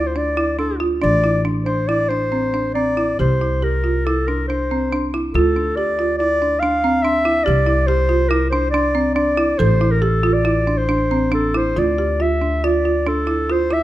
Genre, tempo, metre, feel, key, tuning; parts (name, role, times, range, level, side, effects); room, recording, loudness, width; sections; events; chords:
contemporary instrumental, chamber music in an uneven meter; 140 BPM; 5/4; straight; D minor; A4 = 440 Hz
mellow clarinet; melody; 0.0-13.8 s; A4 to F5; -20 LUFS; left 1 dB
folk marimba with medium mallets; arpeggios; 0.0-13.8 s; C4 to A4; -20 LUFS; right 2 dB
upright bass; bass; 0.0-13.8 s; A1 to D2; -21 LUFS; equal
light reverb; minimal, uncompressed stereo recording; -16 LUFS; side -14 dB against mid
0.0-3.2 A section; 3.2-11.8 B section; 11.8-13.8 A section
0.0 Dmadd9; 1.0 Am; 3.2 Cadd9; 5.3 Dm; 7.5 Cadd9; 9.6 Am; 11.8 Dmadd9